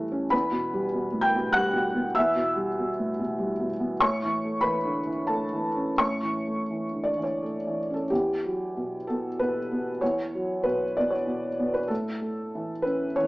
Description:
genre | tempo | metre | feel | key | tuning
neoclassical minimalist piano | 81-100 BPM | 3/4 | rubato | E dorian | A4 = 440 Hz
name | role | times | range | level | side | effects
felt-muted upright piano | solo | 0.0-13.3 s | E2 to G6 | -24 LUFS | equal | none
room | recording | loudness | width
moderate studio reverb, RT60 0.7 s | band playing live in one room, small speaker sound | -24 LUFS | side -21 dB against mid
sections
0.0-8.1 A section; 8.1-13.3 B section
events
none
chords
0.3 Emadd9; 4.0 A; 8.1 Emadd9; 11.9 A

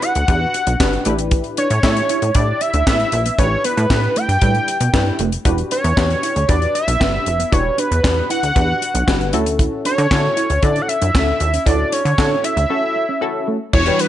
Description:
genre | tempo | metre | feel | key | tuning
early-eighties boogie funk | 116 BPM | 4/4 | straight | unclear | A4 = 440 Hz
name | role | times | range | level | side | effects
fat analog lead | melody | 0.0-14.1 s | B4 to G5 | -19 LUFS | equal | chorus, slapback echo
funky polysynth comp | accompaniment | 0.0-14.1 s | C#4 to E5 | -24 LUFS | left 3 dB | chorus
mellow electric guitar | riff | 0.0-14.0 s | G3 to G4 | -26 LUFS | right 5 dB | wide subtle chorus
tight funk drum kit | drums | 0.0-14.1 s | crash cymbal, handclaps, hi-hat, kick drum, snare drum | -19 LUFS | equal | gated reverb
plucky analog bass | bass | 0.2-13.9 s | E1 to D3 | -19 LUFS | equal | none
warm analog pad | sustained chords | 13.7-14.1 s | E3 to E4 | -23 LUFS | right 3 dB | chorus
room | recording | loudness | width
little or no reverb | nothing above 10.5 kHz | -15 LUFS | side -12 dB against mid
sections
0.0-13.7 A section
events
break 12.7-13.7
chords
0.0 Em9; 1.1 A9sus4; 5.5 Em9; 9.3 Dmaj9

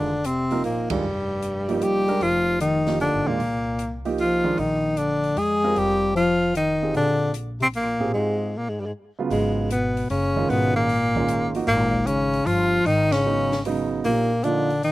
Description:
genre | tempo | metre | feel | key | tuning
modal jazz | 152 BPM | 3/4 | swing 67% on 8ths | G# dorian from 9.3 s | A4 = 439 Hz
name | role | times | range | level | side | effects
warm tenor saxophone | melody | 0.0-14.9 s | G3 to Ab4 | -22 LUFS | equal | none
dark bass clarinet | second line | 0.0-14.9 s | G2 to Ab3 | -27 LUFS | left 3 dB | none
warm concert grand piano | accompaniment | 0.0-14.7 s | Db3 to Bb4 | -26 LUFS | right 5 dB | slapback echo
upright bass | bass | 0.0-14.9 s | E1 to F2 | -30 LUFS | equal | none
open jazz drum kit | drums | 0.2-14.9 s | hi-hat, kick drum, ride cymbal, snare drum | -38 LUFS | left 1 dB | none
room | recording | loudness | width
little or no reverb | recorded outdoors, with no room sound | -20 LUFS | side -17 dB against mid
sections
0.0-9.3 A section; 9.3-14.9 B section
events
band accent 0.8, 13.1; break 8.1-9.3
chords
0.0 F13sus4; 4.6 Bb13sus4; 9.3 G#9sus4; 14.0 A#sus4

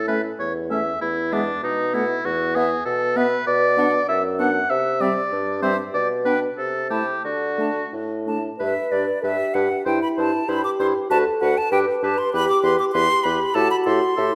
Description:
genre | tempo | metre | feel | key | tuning
quick classical-period movement for wind quintet | 97 BPM | 2/4 | rubato | G major from 3.5 s | A4 = 440 Hz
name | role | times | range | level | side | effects
clear oboe | second line | 0.0-14.3 s | D4 to F#5 | -27 LUFS | equal | none
mellow bassoon | bass | 0.0-14.3 s | D2 to D3 | -27 LUFS | equal | none
bright silver concert flute | melody | 0.1-14.3 s | D5 to D6 | -27 LUFS | equal | none
warm French horn | accompaniment | 0.1-14.3 s | G3 to B4 | -28 LUFS | equal | none
warm clarinet | accompaniment | 0.1-14.3 s | B3 to G4 | -31 LUFS | equal | none
room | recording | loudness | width
wet recital hall reverb, RT60 1.6 s | none | -21 LUFS | mono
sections
0.0-8.6 A section; 8.6-14.3 B section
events
none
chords
0.0 A; 1.0 E; 1.6 B7; 2.2 E5; 3.5 Bm; 4.7 C; 5.9 G/B; 6.6 Am/C; 7.2 D; 8.6 G; 9.9 C/G; 11.1 D6; 11.7 G; 12.3 Em; 13.6 Am7

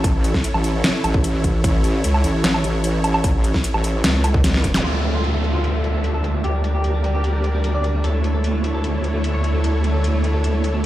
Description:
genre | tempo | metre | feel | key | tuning
heavy wobble dubstep | 150 BPM | 4/4 | half-time | unclear | A4 = 438 Hz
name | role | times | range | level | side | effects
supersaw chords | sustained chords | 0.0-10.9 s | D3 to E5 | -26 LUFS | equal | sidechain pumping, low-pass filter
wobble bass | bass | 0.0-10.9 s | E1 to D2 | -20 LUFS | equal | chorus, overdrive
dubstep drum kit | drums | 0.0-10.7 s | crash cymbal, hi-hat, snare drum, woodblock | -22 LUFS | equal | overdrive, low-pass filter on hats, low-pass filter on cymbals, low-pass filter on perc, low-pass filter on snare, low-pass filter on room
electronic kick drum | drums | 0.0-4.7 s | none | -20 LUFS | equal | overdrive
zap and downlifter | sound effects | 4.7-8.0 s | none | -28 LUFS | equal | none
electric guitar at the edge of break-up | melody | 4.8-10.8 s | G3 to D5 | -26 LUFS | right 1 dB | tape echo
room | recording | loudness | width
light reverb | played on a big sound system in a bare room, large studio reverb | -17 LUFS | side -14 dB against mid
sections
0.0-4.8 A section; 4.8-10.9 B section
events
drop 0.0-4.8; drum fill 4.4-4.8; band accent 4.7; filter sweep on supersaw synth 4.8-10.9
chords
0.0 A; 4.8 Dmadd9; 6.4 Gm/D; 8.0 A/D

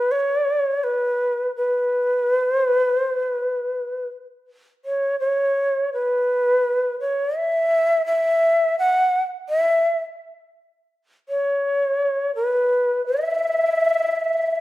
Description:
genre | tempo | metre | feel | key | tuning
japanese traditional | 84 BPM | 4/4 | rubato | unclear | A4 = 440 Hz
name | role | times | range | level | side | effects
breathy shakuhachi | solo | 0.0-14.6 s | B4 to F#5 | -19 LUFS | equal | none
room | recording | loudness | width
moderate recital hall reverb, RT60 1.3 s | none | -19 LUFS | side -16 dB against mid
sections
0.0-14.6 A section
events
none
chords
none

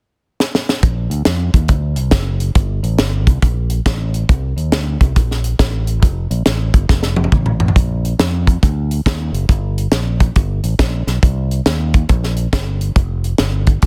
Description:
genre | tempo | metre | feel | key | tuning
uptempo gospel | 139 BPM | 4/4 | swing 64% on 8ths | Bb major | A4 = 440 Hz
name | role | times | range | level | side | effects
tight funk drum kit | drums | 0.4-13.9 s | hi-hat, kick drum, snare drum, toms | -17 LUFS | equal | none
fingered electric bass | bass | 0.8-13.9 s | F1 to F2 | -20 LUFS | equal | none
room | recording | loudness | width
little or no reverb | dense, heavily limited modern master | -16 LUFS | mono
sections
0.8-7.8 A section; 7.8-13.9 B section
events
drum fill 0.4-0.8, 6.9-7.8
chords
none

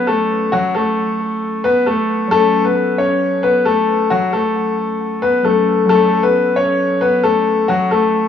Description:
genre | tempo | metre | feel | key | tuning
hip hop | 134 BPM | 4/4 | half-time | F# minor | A4 = 440 Hz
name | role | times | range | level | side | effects
clear concert grand piano | melody | 0.0-8.3 s | F#3 to C#5 | -14 LUFS | left 3 dB | low-pass filter, analog delay
warbly lo-fi synth keys | accompaniment | 0.0-8.3 s | F#3 to A4 | -23 LUFS | right 1 dB | chorus, low-pass filter
room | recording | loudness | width
light reverb, small room ambience | dry, gritty hardware recording | -13 LUFS | side -8 dB against mid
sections
0.0-8.3 A section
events
none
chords
0.0 F#m

